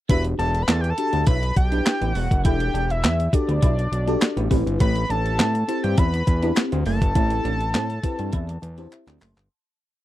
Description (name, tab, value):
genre	early-eighties boogie funk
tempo	102 BPM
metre	4/4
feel	straight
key	E minor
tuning	A4 = 442 Hz
part	fat analog lead	melody	0.1-8.9 s	D5 to B5	-27 LUFS	equal	chorus
part	FM electric piano with soft pad layer	accompaniment	0.1-9.5 s	C4 to C6	-27 LUFS	left 2 dB	chorus, tremolo
part	electric guitar at the edge of break-up	riff	0.1-9.3 s	G3 to E4	-32 LUFS	right 4 dB	lush chorus
part	fat analog bass	bass	0.1-9.5 s	E1 to A2	-23 LUFS	equal	none
part	clean 12-bit digital drum machine	drums	0.1-9.5 s	handclaps, hi-hat, kick drum, snare drum	-21 LUFS	equal	overdrive
room	little or no reverb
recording	dry, close 1970s-style studio recording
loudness	-19 LUFS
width	side -14 dB against mid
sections	0.1-9.5 verse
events	fade-out 7.2-9.5; FM electric piano fill 8.6-9.5; drum fill 8.9-9.5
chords	0.1 Em7; 4.5 Am7